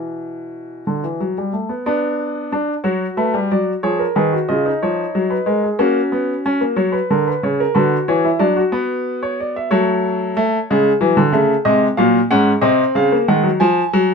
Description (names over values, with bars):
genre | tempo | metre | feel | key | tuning
classical, baroque-style 4-part fugue for grand piano | 61 BPM (dotted quarters) | 12/8 | straight | B minor | A4 = 444 Hz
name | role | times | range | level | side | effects
clear baby grand piano | solo | 0.0-14.1 s | G#2 to G#5 | -15 LUFS | equal | none
room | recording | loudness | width
light reverb | minimal, uncompressed stereo recording | -15 LUFS | side -5 dB against mid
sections
0.0-1.9 A section; 1.9-14.1 B section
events
none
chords
0.0 Bm; 3.8 C#7; 5.8 F#/A#; 7.8 Bm/D; 9.7 F#m; 11.7 G#7; 13.6 C#/E# (rootless)